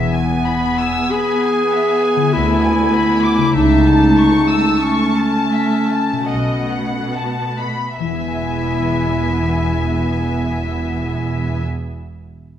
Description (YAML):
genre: classical, slow romantic movement for symphony orchestra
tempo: 33-50 BPM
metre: 3/4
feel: rubato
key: E major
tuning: A4 = 439 Hz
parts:
  - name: muted studio violin section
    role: melody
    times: 0.0-11.6 s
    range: F#5 to A5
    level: -27 LUFS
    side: left 2 dB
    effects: none
  - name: mellow clarinet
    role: second line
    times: 0.0-11.6 s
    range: B3 to G#4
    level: -18 LUFS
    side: left 1 dB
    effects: none
  - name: muted symphonic violin section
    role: second line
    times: 0.0-11.6 s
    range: D#5 to E6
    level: -24 LUFS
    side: left 2 dB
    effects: none
  - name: muted studio viola section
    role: accompaniment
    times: 0.0-11.6 s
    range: A3 to B3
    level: -24 LUFS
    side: right 2 dB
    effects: none
  - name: concert harp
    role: arpeggios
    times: 0.0-11.9 s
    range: B2 to G#5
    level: -26 LUFS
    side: left 7 dB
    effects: none
  - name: muted studio cello section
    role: bass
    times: 0.0-11.6 s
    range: C#2 to B2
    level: -22 LUFS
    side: right 2 dB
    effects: none
  - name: muted studio double bass section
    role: bass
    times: 0.0-11.6 s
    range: E1 to D2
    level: -24 LUFS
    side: right 3 dB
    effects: none
room: wet recital hall reverb, RT60 1.6 s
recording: none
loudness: -14 LUFS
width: side -10 dB against mid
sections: 0.0-8.0 A section; 8.0-12.6 B section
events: slowing down 0.0-8.0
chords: 0.0 E; 2.3 E7/D; 3.5 A/C#; 6.3 B7; 8.0 E